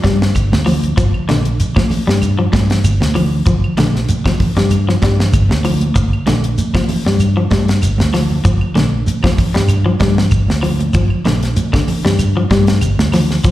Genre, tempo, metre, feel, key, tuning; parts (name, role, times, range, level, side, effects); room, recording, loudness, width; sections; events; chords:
afrobeat; 96 BPM; 4/4; swing 53% on 16ths; G minor; A4 = 441 Hz
electric guitar at the edge of break-up; arpeggios; 0.0-13.5 s; D3 to G3; -18 LUFS; left 3 dB; slapback echo
fingered electric bass; bass; 0.0-13.5 s; G1 to G2; -15 LUFS; equal
tight funk drum kit; drums; 0.0-13.5 s; hi-hat, kick drum, snare drum; -17 LUFS; equal
congas; percussion; 0.0-13.3 s; -22 LUFS; right 4 dB; slapback echo
shekere; percussion; 0.0-13.5 s; -20 LUFS; right 1 dB
claves; percussion; 0.3-13.3 s; -31 LUFS; right 3 dB; slapback echo
light reverb; live gig heard through the venue's PA, recital hall reverb; -12 LUFS; side -14 dB against mid
0.0-13.5 A section
0.0 G7(no3)